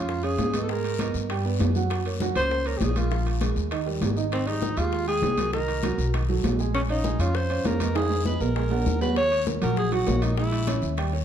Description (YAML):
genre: Afro-Cuban jazz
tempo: 198 BPM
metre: 4/4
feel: straight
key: Bb minor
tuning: A4 = 438 Hz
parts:
  - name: breathy alto saxophone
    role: melody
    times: 0.0-10.9 s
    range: C4 to Db5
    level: -27 LUFS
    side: equal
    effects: none
  - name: dark concert grand piano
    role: accompaniment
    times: 0.0-11.2 s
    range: Eb3 to Ab5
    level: -30 LUFS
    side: right 6 dB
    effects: none
  - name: upright bass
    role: bass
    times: 0.0-11.2 s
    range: Ab1 to Ab2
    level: -27 LUFS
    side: left 1 dB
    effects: none
  - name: bongos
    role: percussion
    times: 0.1-11.2 s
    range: none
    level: -37 LUFS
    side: left 9 dB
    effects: none
  - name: congas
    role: percussion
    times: 0.1-11.2 s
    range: none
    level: -34 LUFS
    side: left 3 dB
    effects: none
  - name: guiro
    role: percussion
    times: 0.1-11.2 s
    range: none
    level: -42 LUFS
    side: left 8 dB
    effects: none
  - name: timbales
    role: percussion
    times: 0.2-11.1 s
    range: none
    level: -33 LUFS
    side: right 4 dB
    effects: none
room: moderate large studio reverb, RT60 1.2 s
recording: dark, warm production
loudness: -22 LUFS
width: side -9 dB against mid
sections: 0.0-9.2 A section; 9.2-11.2 B section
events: drum fill 8.0-9.2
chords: 0.0 Bbm7 (rootless); 0.7 Abmadd9; 1.3 G; 1.9 Gbadd9; 3.1 Bb5; 3.7 Eb; 4.3 Abmaj7; 5.5 Cm7b5; 6.1 B7; 6.7 Bbm9; 8.0 Fm7b5; 8.6 Bbaug7; 9.2 Ebm7; 10.4 Bbm7b5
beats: 0.09 0.39 | 0.69 0.99 1.29 1.60 | 1.90 2.20 2.51 2.81 | 3.11 3.41 3.72 4.02 | 4.32 4.62 4.93 5.23 | 5.53 5.84 6.14 6.44 | 6.74 7.05 7.35 7.65 | 7.95 8.26 8.56 8.86 | 9.16 9.46 9.77 10.07 | 10.37 10.68 10.98